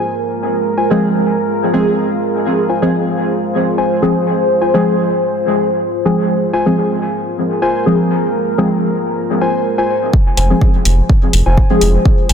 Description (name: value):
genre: dub techno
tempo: 125 BPM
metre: 4/4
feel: straight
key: F minor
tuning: A4 = 440 Hz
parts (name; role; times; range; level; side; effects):
- deep dark ambient pad; sustained chords; 0.0-12.3 s; Ab3 to C5; -18 LUFS; equal; chorus, built-in reverb, sidechain pumping
- warbly dusty pluck; riff; 0.0-12.3 s; F4 to Ab5; -21 LUFS; left 3 dB; chorus, sidechain pumping, dub echo
- deep mellow chord stab; stabs; 0.9-12.3 s; F3 to Ab4; -16 LUFS; equal; chorus, phaser, cassette tape, sidechain pumping, dub echo
- electronic kick drum; drums; 10.1-12.2 s; none; -11 LUFS; equal; none
- round analog bass; bass; 10.4-12.3 s; F1; -12 LUFS; equal; sidechain pumping
- electronic hi-hat; drums; 10.4-12.3 s; none; -18 LUFS; left 2 dB; none
room: moderate lush hall reverb, RT60 1.8 s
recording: dense, heavily limited modern master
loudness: -12 LUFS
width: side -8 dB against mid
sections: 0.0-10.1 A section; 10.1-12.3 B section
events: none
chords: 0.0 Fm